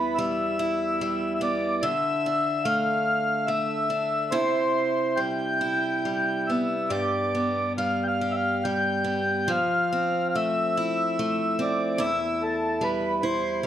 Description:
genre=celtic folk, Celtic slow air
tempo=72 BPM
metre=3/4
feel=rubato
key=unclear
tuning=A4 = 440 Hz
part: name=mellow accordion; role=melody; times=0.0-13.7 s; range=A4 to G5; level=-25 LUFS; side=equal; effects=none
part: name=picked acoustic archtop guitar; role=accompaniment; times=0.0-13.7 s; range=E2 to G4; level=-27 LUFS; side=equal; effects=none
room=moderate recital hall reverb, RT60 1.4 s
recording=dark, warm production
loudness=-23 LUFS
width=side -10 dB against mid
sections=0.0-13.7 A section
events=none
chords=0.0 Em; 1.8 Dsus2; 4.3 Cmaj7; 6.9 G; 9.5 Fmaj7; 12.0 Em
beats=0.17 1.00 | 1.82 2.65 3.47 | 4.32 5.17 6.04 | 6.90 7.78 8.63 | 9.48 10.34 11.18 | 12.01 12.82 13.64

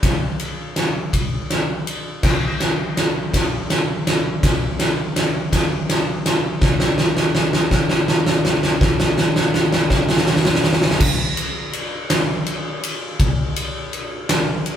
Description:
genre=rock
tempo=55 BPM (dotted quarters)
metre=6/8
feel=straight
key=none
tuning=none
part: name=huge arena drum kit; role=drums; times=0.0-14.8 s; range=crash cymbal, kick drum, ride cymbal, snare drum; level=-17 LUFS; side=equal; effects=none
room=light reverb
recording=band playing live in one room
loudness=-17 LUFS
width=side -9 dB against mid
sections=0.0-11.0 A section; 11.0-14.8 B section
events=build-up 0.0-11.0; drum fill 0.0-11.0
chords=none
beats=| 0.03 1.13 | 2.23 3.33 | 4.43 5.53 | 6.62 7.72 | 8.81 9.91 | 11.01 12.10 | 13.20 14.29

